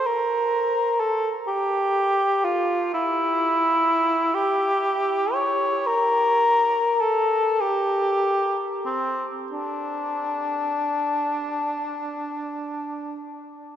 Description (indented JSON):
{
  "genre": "classical, free, expressive piece for unaccompanied cor anglais",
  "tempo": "20-43 BPM (dotted quarters)",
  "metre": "6/8",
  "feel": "rubato",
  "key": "G minor",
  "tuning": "A4 = 440 Hz",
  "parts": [
    { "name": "mellow cor anglais", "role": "solo", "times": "0.0-13.2 s", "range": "C4 to C#5", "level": "-21 LUFS", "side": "equal", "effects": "none" }
  ],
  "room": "wet cathedral reverb, RT60 6.9 s",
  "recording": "heard from further back in the room, nothing above 7.9 kHz",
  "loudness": "-21 LUFS",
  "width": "side -10 dB against mid",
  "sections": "0.0-13.8 A section",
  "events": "none",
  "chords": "none",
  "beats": "| 0.08 1.48 | 2.94 4.34 | 5.86 7.60 | 9.50 11.58"
}